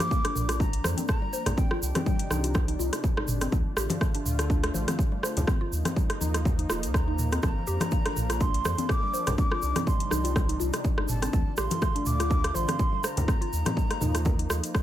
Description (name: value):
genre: afro house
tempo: 123 BPM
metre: 4/4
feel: swing 55% on 16ths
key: C dorian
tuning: A4 = 436 Hz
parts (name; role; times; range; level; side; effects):
- breathy mellow jazz flute; melody; 0.0-2.8, 7.0-14.7 s; G5 to D6; -34 LUFS; right 1 dB; ping-pong delay
- warm analog pad; sustained chords; 0.0-14.8 s; C3 to F4; -36 LUFS; equal; chorus, sidechain pumping
- afro-pop drum kit; drums; 0.0-14.8 s; hi-hat, rim click, toms; -32 LUFS; right 1 dB; small room ambience
- egg shaker; percussion; 0.0-14.8 s; none; -39 LUFS; right 4 dB; none
- mallet-like synth pluck; arpeggios; 0.1-14.8 s; G3 to C5; -35 LUFS; left 1 dB; chorus, phaser, cassette tape, sidechain pumping, ping-pong delay
- electronic kick drum; drums; 0.1-14.8 s; none; -26 LUFS; equal; small room ambience
- warm sub bass; bass; 0.4-14.6 s; Eb1 to F2; -30 LUFS; equal; sidechain pumping
- congas; percussion; 0.8-14.4 s; none; -34 LUFS; left 2 dB; none
room: digital ambience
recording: none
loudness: -24 LUFS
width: side -12 dB against mid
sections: 0.0-14.8 A section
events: none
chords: 0.0 Bb; 1.6 Cmadd9; 3.5 Dm7; 5.5 Ebsus2; 7.4 Bb; 9.4 Cmadd9; 11.3 Dm7; 13.3 Ebsus2